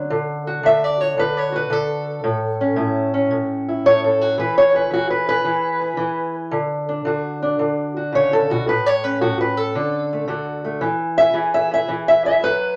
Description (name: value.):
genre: acoustic country blues, solo or duo.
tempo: 112 BPM.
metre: 4/4.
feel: swing 67% on 8ths.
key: unclear.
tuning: A4 = 440 Hz.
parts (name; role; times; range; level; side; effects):
fingerpicked steel-string acoustic guitar; solo; 0.0-12.8 s; A2 to E5; -20 LUFS; equal; none.
room: wet studio reverb, RT60 0.8 s.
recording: none.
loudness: -20 LUFS.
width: mono.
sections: 0.0-12.8 A section.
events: steel-string acoustic guitar solo 0.0-12.8.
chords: 0.0 D; 2.2 A; 4.4 E; 6.5 D; 8.7 A; 9.7 D; 10.8 E.